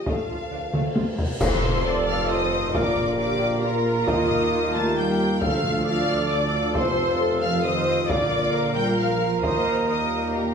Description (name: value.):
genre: cinematic, epic orchestral film score.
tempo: 135 BPM.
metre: 3/4.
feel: straight.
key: unclear.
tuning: A4 = 440 Hz.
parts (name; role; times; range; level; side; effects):
warm symphonic violin section; melody; 0.0-10.5 s; A5 to A6; -31 LUFS; left 3 dB; none.
rich studio violin section; second line; 0.0-10.5 s; Bb4 to A5; -29 LUFS; left 4 dB; none.
mellow French horn section; sustained chords; 0.0-10.5 s; F3 to A4; -33 LUFS; left 2 dB; none.
rich symphonic viola section; accompaniment; 0.1-10.5 s; A3 to D5; -28 LUFS; right 1 dB; none.
rich symphonic cello section; bass; 0.1-10.5 s; Bb2 to A3; -31 LUFS; right 3 dB; none.
warm symphonic double bass section; bass; 0.1-10.5 s; Bb1 to F2; -33 LUFS; right 3 dB; none.
solo taiko drums; drums; 0.1-9.8 s; none; -27 LUFS; equal; none.
cymbal swell and impact; sound effects; 0.8-2.7 s; none; -37 LUFS; equal; none.
mellow woodwind section; sustained chords; 1.4-10.5 s; A3 to F5; -31 LUFS; left 1 dB; none.
mellow trumpet; stabs; 1.4-10.5 s; A4 to Bb4; -29 LUFS; right 2 dB; none.
warm tuba; bass; 1.4-10.5 s; F1 to Eb2; -30 LUFS; right 2 dB; none.
clash cymbals and concert bass drum; percussion; 1.4-2.3 s; none; -32 LUFS; equal; none.
timpani; percussion; 5.4-6.0 s; D3; -34 LUFS; left 1 dB; none.
room: wet recital hall reverb, RT60 1.4 s.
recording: recorded in a church or concert hall.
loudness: -20 LUFS.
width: side -6 dB against mid.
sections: 0.0-1.4 A section; 1.4-10.5 B section.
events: drum fill 0.7-1.4; cymbal swell 0.8-1.4; band accent 1.4-1.9; impact 1.4-2.7.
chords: 0.1 Dm; 1.4 F; 2.7 Bb; 4.1 Ebadd9; 5.4 Dm; 6.8 F; 8.1 Bb; 9.4 Ebadd9.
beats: | 0.07 0.52 0.96 | 1.41 1.85 2.30 | 2.74 3.19 3.63 | 4.08 4.52 4.97 | 5.41 5.86 6.30 | 6.75 7.20 7.64 | 8.09 8.53 8.98 | 9.43 9.87 10.32.